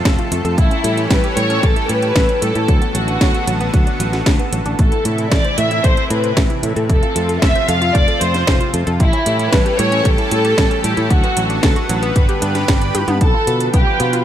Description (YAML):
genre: italo disco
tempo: 114 BPM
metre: 4/4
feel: straight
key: A minor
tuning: A4 = 440 Hz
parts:
  - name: lush unison pad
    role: sustained chords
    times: 0.0-14.2 s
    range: C3 to B4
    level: -23 LUFS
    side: equal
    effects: chorus
  - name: analog pluck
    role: arpeggios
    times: 0.0-14.2 s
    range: F#3 to G5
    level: -25 LUFS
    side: right 1 dB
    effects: chorus, cassette tape, ping-pong delay
  - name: modern bright fingered electric bass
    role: bass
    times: 0.1-14.2 s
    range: F1 to B2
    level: -20 LUFS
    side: equal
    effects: none
  - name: electronic kick drum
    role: drums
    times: 0.1-13.8 s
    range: none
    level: -15 LUFS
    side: equal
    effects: none
  - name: house drum kit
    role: drums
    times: 0.1-14.2 s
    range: hi-hat, snare drum, toms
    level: -22 LUFS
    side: equal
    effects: none
  - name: dark studio violin section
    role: melody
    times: 0.6-14.2 s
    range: E4 to A5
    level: -19 LUFS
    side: equal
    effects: ping-pong delay
room: light reverb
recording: none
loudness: -13 LUFS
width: side -11 dB against mid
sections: 0.0-13.2 A section; 13.2-14.2 B section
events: filter sweep on synth arpeggio sound 0.0-13.2; drum fill 12.9, 13.2-14.2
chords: 0.0 F; 0.6 A7; 2.7 D6; 4.8 Am; 6.9 F; 9.0 A7; 11.1 D6; 12.2 G; 13.2 Bdim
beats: 0.05 | 0.58 1.11 1.63 2.16 | 2.69 3.21 3.74 4.26 | 4.79 5.32 5.84 6.37 | 6.89 7.42 7.95 8.47 | 9.00 9.53 10.05 10.58 | 11.11 11.63 12.16 12.69 | 13.21 13.74